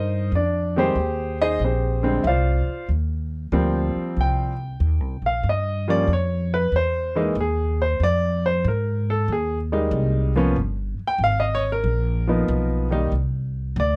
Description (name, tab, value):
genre	jazz piano trio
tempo	94 BPM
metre	4/4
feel	swing 68% on 8ths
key	unclear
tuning	A4 = 440 Hz
part	clear grand piano	melody	0.0-14.0 s	D3 to G5	-25 LUFS	equal	none
part	upright bass	bass	0.0-14.0 s	G1 to Ab2	-25 LUFS	equal	none
room	little or no reverb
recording	close, detailed microphones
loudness	-22 LUFS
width	mono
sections	0.0-14.0 A section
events	grand piano solo 0.0-14.0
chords	0.3 Fm9; 1.6 Bb13; 2.9 Eb6; 5.4 G7(b5, no3); 6.7 Caug; 8.0 Fm11; 10.6 G7alt; 13.1 Csus2